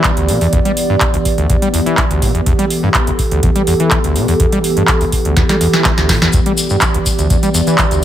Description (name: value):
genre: acid house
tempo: 124 BPM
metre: 4/4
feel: straight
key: E minor pentatonic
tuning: A4 = 439 Hz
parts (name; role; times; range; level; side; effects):
- dark analog pad; sustained chords; 0.0-8.0 s; E3 to D5; -17 LUFS; right 1 dB; chorus, sidechain pumping
- overdriven acid bass; riff; 0.0-8.0 s; D2 to G3; -16 LUFS; left 1 dB; distortion, tube saturation, analog chorus, dub echo
- booming analog drum machine; drums; 0.0-8.0 s; handclaps, hi-hat, snare drum; -17 LUFS; right 1 dB; none
- electronic kick drum; drums; 0.0-7.9 s; none; -16 LUFS; equal; none
- tube shaker; percussion; 6.3-8.0 s; none; -22 LUFS; left 4 dB; none
room: light reverb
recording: none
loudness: -11 LUFS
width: side -11 dB against mid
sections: 0.0-8.0 A section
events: drum fill 5.4-6.3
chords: 0.0 Em7